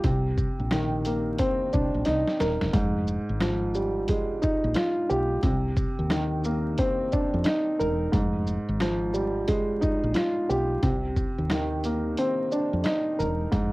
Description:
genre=hip hop, boom-bap hip-hop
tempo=89 BPM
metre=4/4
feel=swing 62% on 16ths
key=unclear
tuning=A4 = 439 Hz
part: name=dark upright piano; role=accompaniment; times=0.0-13.7 s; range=Ab2 to Bb4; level=-25 LUFS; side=equal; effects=cassette tape, high-pass filter, low-pass filter
part: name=woody fretless electric bass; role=bass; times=0.0-13.7 s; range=Eb1 to F2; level=-29 LUFS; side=equal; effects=analog chorus
part: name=trip hop sampler-style drum kit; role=drums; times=0.0-13.7 s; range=hi-hat, kick drum, rim click, shaker, snare drum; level=-29 LUFS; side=equal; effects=cassette tape
room=light reverb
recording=home recording on cassette, vinyl crackle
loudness=-23 LUFS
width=side -20 dB against mid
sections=0.0-13.5 A section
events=drum fill 2.1-2.7; kick muted 12.2-13.5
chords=0.0 Cm9; 2.7 Fm9; 5.4 Cm9; 8.1 Fm9; 10.8 Cm9

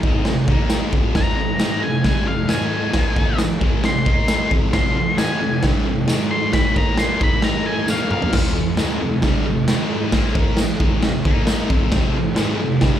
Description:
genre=garage rock duo or trio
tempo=134 BPM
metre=4/4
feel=straight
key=F minor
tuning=A4 = 440 Hz
part: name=thick fuzz guitar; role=riff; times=0.0-13.0 s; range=F2 to Eb4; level=-21 LUFS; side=equal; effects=distortion, slapback echo
part: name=raw garage drum kit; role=drums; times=0.0-12.9 s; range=crash cymbal, kick drum, snare drum, toms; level=-18 LUFS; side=equal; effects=none
part: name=tambourine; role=percussion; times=0.7-12.5 s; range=none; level=-35 LUFS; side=right 2 dB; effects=none
part: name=octave-fuzz lead guitar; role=melody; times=1.2-8.3 s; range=F5 to C6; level=-23 LUFS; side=left 2 dB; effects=distortion
room=little or no reverb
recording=live gig heard through the venue's PA, club reverb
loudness=-16 LUFS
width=side -10 dB against mid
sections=0.0-8.3 A section; 8.3-13.0 B section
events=lead electric guitar solo 0.0-8.3; drum fill 7.9-8.3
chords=0.5 Eb5; 0.9 Fm; 2.5 Ab5; 3.0 Fm; 4.1 Eb5; 4.5 Fm; 6.1 Ab5; 6.5 Fm; 7.2 Eb5; 7.9 Bb5; 8.3 Fm; 9.7 Ab5; 10.1 Fm; 11.3 Eb5; 11.7 Fm

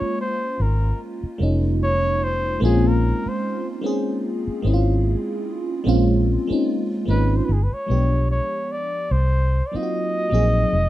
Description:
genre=R&B, neo-soul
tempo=74 BPM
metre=4/4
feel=swing 57% on 16ths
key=Bb minor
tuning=A4 = 439 Hz
part: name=warm flugelhorn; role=melody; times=0.0-10.9 s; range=Ab4 to Eb5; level=-25 LUFS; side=equal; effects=none
part: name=FM electric piano with soft pad layer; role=accompaniment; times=0.0-10.7 s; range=F3 to Ab4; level=-23 LUFS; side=equal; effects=chorus, phaser
part: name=vintage muted fingered electric bass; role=bass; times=0.0-10.9 s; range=F1 to C2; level=-19 LUFS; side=equal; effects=none
room=moderate studio reverb, RT60 0.5 s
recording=rough home demo mix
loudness=-19 LUFS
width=side -14 dB against mid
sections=0.0-5.9 A section; 5.9-10.9 B section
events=flugelhorn solo 0.0-5.9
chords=0.0 Bbm9; 7.5 G7b9; 9.1 Cm7b5

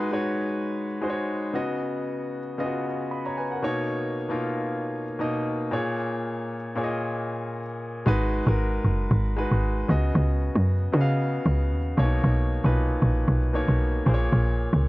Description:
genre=amapiano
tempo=115 BPM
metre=4/4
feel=swing 55% on 16ths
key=unclear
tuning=A4 = 439 Hz
part: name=warm concert grand piano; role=accompaniment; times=0.0-14.9 s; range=A#2 to B5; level=-27 LUFS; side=left 1 dB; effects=none
part: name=woody log drum bass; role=bass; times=8.1-14.9 s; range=F#1 to C#3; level=-22 LUFS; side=equal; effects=none
room=studio ambience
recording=worn, warbling old tape, cassette tape, warbly pitch drift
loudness=-23 LUFS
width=side -19 dB against mid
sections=0.0-14.9 A section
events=none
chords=0.0 G#m7; 1.5 C#9sus4; 3.6 Bmaj9; 5.7 A#m7; 8.1 G#m7; 9.9 C#9sus4; 12.0 Bmaj9; 14.1 A#m7

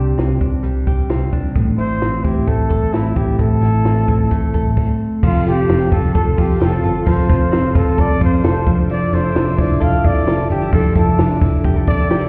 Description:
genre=jangly indie pop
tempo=131 BPM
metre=4/4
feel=straight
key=F major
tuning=A4 = 439 Hz
part: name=breathy trumpet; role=melody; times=0.0-12.3 s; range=E4 to F5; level=-24 LUFS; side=equal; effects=none
part: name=direct-recorded clean electric guitar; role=arpeggios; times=0.0-12.3 s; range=A2 to A4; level=-23 LUFS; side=equal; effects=none
part: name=vintage muted fingered electric bass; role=bass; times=0.0-12.3 s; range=F1 to F2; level=-20 LUFS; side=equal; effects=none
part: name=compact cocktail drum kit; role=drums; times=0.2-12.2 s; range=crash cymbal, hi-hat, kick drum, snare drum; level=-21 LUFS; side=equal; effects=none
part: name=fingerpicked steel-string acoustic guitar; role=accompaniment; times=5.2-12.3 s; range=F3 to A4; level=-26 LUFS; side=equal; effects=none
part: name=lush unison pad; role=sustained chords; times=5.2-12.3 s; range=F3 to D6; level=-31 LUFS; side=equal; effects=none
room=light reverb, small room ambience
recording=heard muffled through a wall, stone room reverb, EQ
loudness=-16 LUFS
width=mono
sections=0.0-5.2 A section; 5.2-12.3 B section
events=none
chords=0.0 Csus2; 1.6 Am; 5.2 F; 8.7 Dmadd9/F

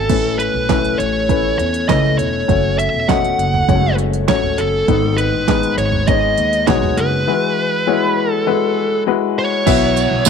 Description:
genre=piano-driven pop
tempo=100 BPM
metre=4/4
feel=straight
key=unclear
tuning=A4 = 440 Hz
part: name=fuzz lead guitar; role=melody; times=0.0-10.3 s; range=A4 to F#5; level=-18 LUFS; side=right 2 dB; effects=distortion, slapback echo
part: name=warm upright piano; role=accompaniment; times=0.0-10.3 s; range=G#2 to A5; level=-18 LUFS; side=left 10 dB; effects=none
part: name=upright bass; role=bass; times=0.0-10.3 s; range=E1 to E2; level=-20 LUFS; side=right 2 dB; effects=none
part: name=deep house drum kit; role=drums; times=0.1-10.3 s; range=crash cymbal, handclaps, hi-hat, kick drum, snare drum, toms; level=-19 LUFS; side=right 6 dB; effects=overdrive
part: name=overdriven electric guitar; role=riff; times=9.7-10.3 s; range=B2 to F#4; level=-24 LUFS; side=right 15 dB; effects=none
part: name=tambourine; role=percussion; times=9.7-10.3 s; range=none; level=-20 LUFS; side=right 23 dB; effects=none
room=light reverb, digital ambience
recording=1960s-style stereo with parts hard left and right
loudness=-14 LUFS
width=side -6 dB against mid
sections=0.1-9.7 A section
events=none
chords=0.1 Aadd9; 2.5 F#m; 4.9 G#m; 7.3 Eadd9; 9.7 Bsus4

